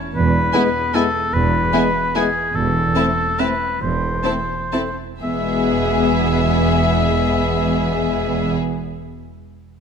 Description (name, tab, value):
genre	classical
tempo	117-166 BPM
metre	3/4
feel	rubato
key	E major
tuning	A4 = 440 Hz
part	warm oboe	second line	0.1-8.6 s	G#4 to E5	-22 LUFS	left 1 dB	none
part	bright studio double bass section	bass	0.1-8.5 s	E1	-24 LUFS	right 4 dB	none
part	warm studio cello section	bass	0.2-8.5 s	E2	-23 LUFS	right 3 dB	none
part	rich studio violin section	melody	0.5-8.5 s	E5 to A5	-28 LUFS	left 4 dB	none
part	rich studio violin section	second line	0.5-8.6 s	E4 to G#4	-26 LUFS	left 4 dB	none
part	rich studio viola section	accompaniment	0.5-8.5 s	B3 to C4	-25 LUFS	right 2 dB	none
part	mellow French horn section	sustained chords	0.5-8.5 s	G#3 to C4	-24 LUFS	left 6 dB	none
room	moderate scoring stage reverb, RT60 2.0 s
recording	none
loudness	-16 LUFS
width	side -6 dB against mid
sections	0.0-5.2 A section; 5.2-8.0 B section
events	slowing down 1.9-5.2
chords	0.2 E; 2.5 Am/E; 5.2 E